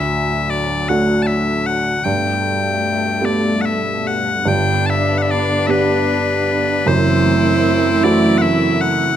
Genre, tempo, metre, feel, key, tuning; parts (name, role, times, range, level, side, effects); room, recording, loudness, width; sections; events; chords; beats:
celtic folk, Celtic slow air; 48-53 BPM (dotted quarters); 6/8; rubato; G major; A4 = 439 Hz
loud bright bagpipes; melody; 0.0-9.2 s; B4 to A5; -19 LUFS; left 4 dB
felt-muted upright piano; accompaniment; 0.0-9.2 s; F#1 to G4; -18 LUFS; right 2 dB
dark studio string section; sustained chords; 0.0-9.2 s; D2 to C4; -22 LUFS; left 2 dB
rich cello; second line; 4.4-9.2 s; D4 to E4; -19 LUFS; right 3 dB
moderate recital hall reverb, RT60 1.3 s; close, detailed microphones; -14 LUFS; side -10 dB against mid
0.0-4.5 A section; 4.5-9.2 A section
0.0 D; 2.1 Gadd9; 4.5 G; 6.9 F#m7b5
0.90 | 2.05 3.23 | 4.47 5.69 | 6.87 8.03